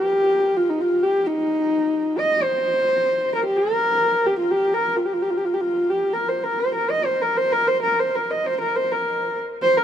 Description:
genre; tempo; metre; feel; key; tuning
mongolian traditional; 129 BPM; 4/4; straight; Bb zhi mode; A4 = 440 Hz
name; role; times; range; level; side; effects
dark horsehead fiddle; melody; 0.0-9.8 s; Eb4 to Eb5; -18 LUFS; equal; none
room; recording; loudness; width
moderate huge ambient reverb, RT60 6.3 s; dark, warm production; -19 LUFS; side -10 dB against mid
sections
0.0-9.8 A section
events
none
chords
none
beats
0.11 | 0.57 1.04 1.50 1.97 | 2.43 2.89 3.36 3.82 | 4.29 4.75 5.21 5.68 | 6.14 6.61 7.07 7.53 | 8.00 8.46 8.92 9.38

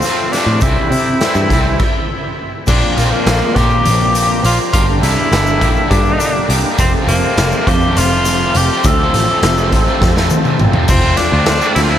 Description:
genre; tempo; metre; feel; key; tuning
psychedelic rock; 204 BPM (eighths); 7/8; straight; unclear; A4 = 440 Hz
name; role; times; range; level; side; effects
bright tenor saxophone; melody; 0.0-12.0 s; Bb3 to A4; -17 LUFS; equal; diffuse ambient delay
percussive tonewheel organ; sustained chords; 0.0-12.0 s; A4 to Bb5; -27 LUFS; right 2 dB; none
raw garage guitar; riff; 0.0-12.0 s; F2 to G4; -18 LUFS; left 1 dB; overdrive, harmonic tremolo
raw garage drum kit; drums; 0.0-11.9 s; crash cymbal, hi-hat, kick drum, ride cymbal, snare drum, toms; -16 LUFS; equal; none
tube shaker; percussion; 0.0-11.8 s; none; -31 LUFS; left 7 dB; none
picked electric bass; bass; 0.5-12.0 s; F1 to C3; -16 LUFS; equal; none
room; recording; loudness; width
moderate huge ambient reverb, RT60 5.2 s; dreamy mix soaked in reverb; -11 LUFS; side -10 dB against mid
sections
0.0-2.7 A section; 2.7-10.9 B section; 10.9-12.0 C section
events
stop 1.8-2.7; drum fill 10.0-10.9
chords
0.0 Fadd9; 0.6 C; 2.7 Bbsus2; 4.7 Gm; 6.8 F; 10.9 Fadd9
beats
0.03 0.33 | 0.62 0.92 1.21 1.51 1.80 2.10 2.39 | 2.69 2.98 3.27 3.57 3.86 4.16 4.45 | 4.74 5.04 5.33 5.62 5.92 6.21 6.50 | 6.80 7.09 7.38 7.68 7.97 8.26 8.55 | 8.85 9.14 9.43 9.72 10.02 10.31 10.60 | 10.89 11.18 11.47 11.77

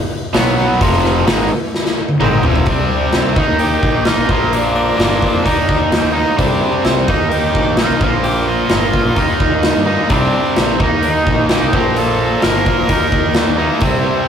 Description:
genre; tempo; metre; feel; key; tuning
classic rock; 129 BPM; 4/4; straight; unclear; A4 = 440 Hz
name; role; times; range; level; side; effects
biting overdriven guitar; riff; 0.3-14.3 s; F2 to Eb4; -15 LUFS; equal; none
fuzz fingered electric bass; bass; 0.3-14.0 s; F1 to G2; -21 LUFS; equal; overdrive
big rock drum kit; drums; 0.3-13.9 s; hi-hat, kick drum, snare drum, toms; -17 LUFS; left 1 dB; none
raspy tenor saxophone; melody; 2.2-14.3 s; C4 to Bb4; -22 LUFS; equal; none
room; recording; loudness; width
moderate booth ambience, RT60 0.2 s; rough rehearsal-room recording; -12 LUFS; side -8 dB against mid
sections
0.0-2.7 A section; 2.7-14.3 B section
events
drum fill 1.7-2.7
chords
0.4 B5; 0.8 F5; 2.7 Csus2; 3.4 Eb; 4.3 Bb; 5.5 Eb5; 6.4 Csus2; 7.1 Eb; 8.0 Bb5; 9.2 Eb; 10.1 Csus2; 10.8 Eb5; 11.7 Bb5; 12.9 Eb5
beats
0.35 | 0.81 1.28 1.74 2.21 | 2.67 3.13 3.60 4.06 | 4.53 4.99 5.46 5.92 | 6.39 6.85 7.32 7.78 | 8.25 8.71 9.18 9.64 | 10.11 10.57 11.04 11.50 | 11.97 12.43 12.90 13.36 | 13.82

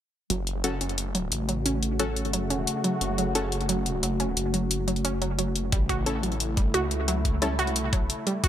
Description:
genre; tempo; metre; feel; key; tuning
dark technical drum and bass; 177 BPM; 4/4; straight; F# minor; A4 = 440 Hz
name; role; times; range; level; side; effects
sweeping resonant pad; sustained chords; 0.3-8.5 s; C#3 to F#4; -30 LUFS; equal; wide subtle chorus, sidechain pumping
wide unison pluck; arpeggios; 0.3-8.5 s; F#3 to F#4; -31 LUFS; right 3 dB; sidechain pumping, digital delay
snarling distorted saw bass; bass; 0.3-8.5 s; F#1 to C#2; -30 LUFS; equal; distortion, tube saturation
electronic hi-hat; drums; 0.3-8.5 s; none; -29 LUFS; left 3 dB; none
band-passed chord stab; stabs; 0.6-3.5, 6.1-7.5 s; C#4 to A4; -32 LUFS; left 2 dB; chorus, digital delay
electronic kick drum; drums; 5.7-8.5 s; none; -25 LUFS; equal; none
room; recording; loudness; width
light reverb; none; -24 LUFS; side -10 dB against mid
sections
0.3-8.5 A section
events
filter sweep on synth arpeggio sound 0.3-8.5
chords
0.3 F#m; 5.7 A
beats
| 0.30 0.64 0.98 1.32 | 1.66 2.00 2.33 2.67 | 3.01 3.35 3.69 4.03 | 4.37 4.71 5.05 5.38 | 5.72 6.06 6.40 6.74 | 7.08 7.42 7.76 8.10 | 8.44

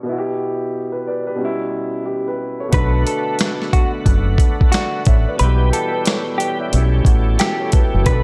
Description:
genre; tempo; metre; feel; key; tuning
hip hop, boom-bap hip-hop; 90 BPM; 4/4; swing 61% on 16ths; B minor; A4 = 440 Hz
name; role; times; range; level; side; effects
dark baby grand piano; accompaniment; 0.0-8.2 s; B2 to A5; -25 LUFS; equal; high-pass filter, low-pass filter
clean electric guitar; melody; 2.7-8.2 s; F#4 to B4; -26 LUFS; equal; spring reverb, high-pass filter, low-pass filter, tape echo
bright tonewheel organ; sustained chords; 2.7-8.2 s; D3 to G4; -29 LUFS; equal; overdrive, chorus vibrato, slow rotary speaker, high-pass filter, low-pass filter
deep dub fingered electric bass; bass; 2.7-8.2 s; F#1 to B1; -18 LUFS; equal; none
dusty soul sampler-style drum kit; drums; 2.7-8.2 s; hi-hat, kick drum, rim click, snare drum; -18 LUFS; equal; none
room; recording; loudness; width
light reverb; none; -18 LUFS; mono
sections
0.0-2.7 A section; 2.7-8.2 B section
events
filter sweep on grand piano 0.0-2.7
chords
0.1 Em/B; 1.4 A9/B (rootless); 2.7 Bm7; 5.4 Em/B; 6.7 A7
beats
| 0.07 0.73 1.40 2.06 | 2.73 3.40 4.07 4.73 | 5.40 6.07 6.73 7.40 | 8.06

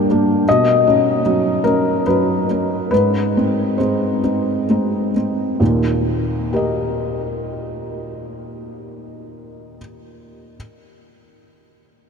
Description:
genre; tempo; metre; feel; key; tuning
neoclassical minimalist piano; 63-80 BPM; 3/4; rubato; Eb major; A4 = 440 Hz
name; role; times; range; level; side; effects
felt-muted upright piano; solo; 0.0-10.6 s; Eb2 to D#5; -16 LUFS; left 1 dB; none
room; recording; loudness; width
wet huge ambient reverb, RT60 7.5 s; in a vast, echoing space; -15 LUFS; side -6 dB against mid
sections
0.0-5.6 A section; 5.6-8.3 B section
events
slowing down 0.0-5.6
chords
0.5 Badd9; 2.9 Ab; 5.6 Eb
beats
| 0.46 1.22 2.04 | 2.91 3.78 4.68 | 5.60 6.50 7.39

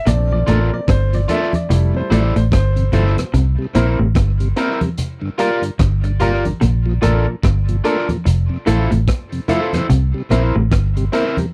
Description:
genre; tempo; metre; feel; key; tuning
roots reggae; 73 BPM; 4/4; swing 60% on 16ths; C mixolydian; A4 = 440 Hz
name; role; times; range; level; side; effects
clear grand piano; stabs; 0.0-11.3 s; G3 to E5; -24 LUFS; equal; none
electric guitar through a small old amp; riff; 0.1-11.0 s; F2 to C3; -24 LUFS; equal; none
vintage muted fingered electric bass; bass; 0.1-11.1 s; F1 to C2; -18 LUFS; equal; none
crunchy breakbeat drum kit; drums; 0.1-11.5 s; hi-hat, kick drum, rim click; -24 LUFS; equal; tape echo
congas; percussion; 0.1-11.5 s; none; -25 LUFS; equal; none
mellow tonewheel organ; accompaniment; 0.3-11.5 s; F2 to F4; -25 LUFS; equal; slow rotary speaker, tube saturation
electric guitar at the edge of break-up; accompaniment; 0.5-11.4 s; E4 to D5; -27 LUFS; equal; tape echo
room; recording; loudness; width
little or no reverb; dry, close 1970s-style studio recording; -17 LUFS; mono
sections
0.0-3.3 A section; 3.3-11.5 B section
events
grand piano solo 0.0-3.3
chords
0.1 Bbmaj7; 1.7 Fmaj7; 3.3 C7; 5.0 Gm7; 6.6 Bbmaj7; 8.3 Fmaj7; 9.9 C7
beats
| 0.07 0.88 1.70 2.52 | 3.34 4.16 4.98 5.80 | 6.62 7.44 8.26 9.08 | 9.90 10.72

